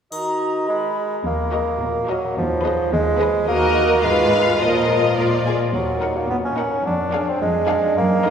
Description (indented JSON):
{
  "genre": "cinematic, playful, whimsical film cue",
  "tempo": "107 BPM",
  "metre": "2/4",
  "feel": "straight",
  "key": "Eb minor",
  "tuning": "A4 = 442 Hz",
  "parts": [
    { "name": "dark clarinet", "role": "second line", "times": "0.1-1.0 s", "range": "Gb4 to Ab4", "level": "-30 LUFS", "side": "left 3 dB", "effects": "none" },
    { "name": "large flute ensemble", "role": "second line", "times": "0.1-1.0 s", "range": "Bb5 to Cb6", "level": "-29 LUFS", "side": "right 1 dB", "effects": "none" },
    { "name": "warm oboe", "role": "second line", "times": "0.1-0.9 s", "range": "Eb5", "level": "-30 LUFS", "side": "equal", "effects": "none" },
    { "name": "clear bassoon", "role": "accompaniment", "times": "0.1-8.3 s", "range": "Eb3 to D4", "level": "-20 LUFS", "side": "right 2 dB", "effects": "none" },
    { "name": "triangle", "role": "percussion", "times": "0.1-1.2 s", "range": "none", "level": "-40 LUFS", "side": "left 3 dB", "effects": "none" },
    { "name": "warm studio cello section", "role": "bass", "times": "1.3-8.3 s", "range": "Eb2 to Bb2", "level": "-24 LUFS", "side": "equal", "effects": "none" },
    { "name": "rich studio violin section", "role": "melody", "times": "1.5-8.3 s", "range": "D5 to Gb5", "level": "-26 LUFS", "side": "left 4 dB", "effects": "none" },
    { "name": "warm symphonic violin section", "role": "second line", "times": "1.5-8.3 s", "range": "Ab4 to Cb5", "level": "-26 LUFS", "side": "left 1 dB", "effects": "none" },
    { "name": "rich studio viola section", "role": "accompaniment", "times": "1.5-8.3 s", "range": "D4 to Ab4", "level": "-26 LUFS", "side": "right 1 dB", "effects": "none" }
  ],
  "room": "wet church reverb, RT60 3.5 s",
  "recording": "recorded in a church or concert hall",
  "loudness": "-17 LUFS",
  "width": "side -7 dB against mid",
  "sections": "0.1-1.2 A section; 1.2-8.3 B section",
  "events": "none",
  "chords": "0.1 Ebm; 0.7 Abm; 1.2 Ebm; 2.4 Abm/Eb; 3.5 Ebm; 4.0 Fdim/Ab; 4.6 Bbsus4; 5.7 Ebm; 6.9 Ddim/F"
}